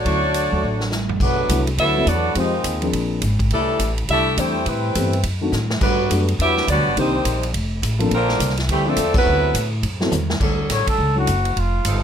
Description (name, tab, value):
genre	jazz, big band swing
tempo	208 BPM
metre	4/4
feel	swing 62% on 8ths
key	unclear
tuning	A4 = 440 Hz
part	warm saxophone section	melody	0.0-9.7 s	E3 to E5	-21 LUFS	right 1 dB	none
part	dark trombone section	second line	0.0-9.7 s	A2 to F#4	-26 LUFS	left 1 dB	none
part	dark concert grand piano	accompaniment	0.0-11.3 s	Eb3 to A4	-23 LUFS	left 2 dB	none
part	bright trumpet section	stabs	0.1-0.8 s	D4 to C#6	-26 LUFS	right 2 dB	none
part	upright bass	bass	0.1-12.0 s	F1 to A2	-22 LUFS	equal	none
part	swinging big-band drum kit	drums	0.1-11.9 s	crash cymbal, hi-hat, kick drum, ride cymbal, snare drum, toms	-24 LUFS	right 1 dB	none
part	mellow saxophone section	sustained chords	10.4-12.0 s	F3 to A4	-27 LUFS	right 1 dB	none
part	breathy trumpet	melody	10.7-12.0 s	F4 to C#5	-22 LUFS	left 1 dB	none
room	little or no reverb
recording	close, detailed microphones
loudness	-17 LUFS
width	side -8 dB against mid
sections	0.0-1.2 A section; 1.2-10.4 B section; 10.4-12.0 C section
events	drum fill 0.6-1.2, 5.5, 10.1; band accent 9.1; trumpet solo 10.4-12.0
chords	0.0 Dmaj7; 1.2 D13/B; 2.4 Fm7; 2.9 Bb9; 3.5 C69; 4.7 Am9; 5.2 D7b9; 5.8 Gmaj7; 7.0 Cm7; 7.5 F6; 8.1 Bbmaj9; 9.3 D13; 10.4 Dmaj7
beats	| 0.05 0.34 0.62 0.91 | 1.20 1.49 1.78 2.07 | 2.35 2.64 2.93 3.22 | 3.51 3.80 4.08 4.37 | 4.66 4.95 5.24 5.52 | 5.81 6.10 6.39 6.67 | 6.96 7.25 7.54 7.83 | 8.11 8.40 8.69 8.98 | 9.26 9.55 9.84 10.13 | 10.41 10.70 10.99 11.28 | 11.56 11.85